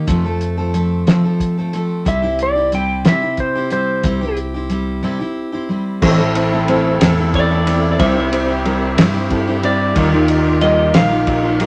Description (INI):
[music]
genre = folk rock and heartland rock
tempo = 61 BPM (dotted quarters)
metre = 6/8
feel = straight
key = C mixolydian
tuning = A4 = 440 Hz
[part]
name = picked steel-string acoustic guitar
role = accompaniment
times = 0.0-11.7 s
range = F2 to A4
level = -22 LUFS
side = equal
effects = none
[part]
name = fingered electric bass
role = bass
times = 0.0-11.7 s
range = A1 to F3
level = -23 LUFS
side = equal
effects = none
[part]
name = cloth-damped thuddy drum kit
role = drums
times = 0.1-11.7 s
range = crash cymbal, hi-hat, kick drum, ride cymbal, snare drum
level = -21 LUFS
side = equal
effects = none
[part]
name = clean lap steel guitar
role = second line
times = 2.1-4.4 s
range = C5 to G5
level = -20 LUFS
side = equal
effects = none
[part]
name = reed electric piano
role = accompaniment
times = 6.0-11.7 s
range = C4 to D5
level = -23 LUFS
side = equal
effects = fast tremolo
[part]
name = musette accordion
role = sustained chords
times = 6.0-11.7 s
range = A3 to C5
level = -26 LUFS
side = equal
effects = none
[part]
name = clean electric guitar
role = melody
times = 7.4-11.7 s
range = D5 to F5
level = -22 LUFS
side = equal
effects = spring reverb
[sound]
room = moderate studio reverb, RT60 0.7 s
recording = faint mains hum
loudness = -16 LUFS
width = mono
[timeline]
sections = 0.0-6.0 A section; 6.0-11.7 B section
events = break 5.0-6.0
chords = 0.1 F; 2.1 C; 6.0 Am; 8.0 C; 10.0 Ebadd9